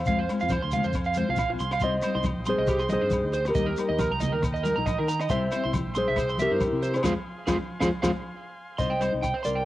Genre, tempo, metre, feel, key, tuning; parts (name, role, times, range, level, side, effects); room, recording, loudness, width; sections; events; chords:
highlife guitar band; 138 BPM; 4/4; swing 55% on 16ths; C minor; A4 = 440 Hz
mellow electric guitar; melody; 0.0-9.7 s; F4 to F5; -27 LUFS; equal; cassette tape
combo organ; sustained chords; 0.0-8.8 s; Eb5 to C6; -43 LUFS; left 1 dB; cassette tape
fingered electric bass; bass; 0.0-9.6 s; Bb1 to Eb3; -32 LUFS; equal
nylon-string guitar; accompaniment; 0.1-9.6 s; G3 to F4; -32 LUFS; left 5 dB; cassette tape
electric guitar at the edge of break-up; arpeggios; 0.1-9.7 s; G4 to C6; -29 LUFS; right 3 dB; cassette tape, analog delay
compact cocktail drum kit; drums; 0.1-9.6 s; crash cymbal, hi-hat, kick drum, rim click, snare drum; -34 LUFS; equal; cassette tape
congas; percussion; 0.1-9.5 s; -35 LUFS; equal
shekere; percussion; 0.1-9.6 s; -35 LUFS; left 3 dB
agogo bells; percussion; 0.3-9.4 s; -41 LUFS; left 4 dB
light reverb, small room ambience; home recording on cassette; -24 LUFS; side -15 dB against mid
0.0-8.8 A section
band accent 7.1-8.8
0.1 Fm; 1.8 Cm; 3.6 Eb; 5.3 C; 7.1 Fm; 8.8 Cm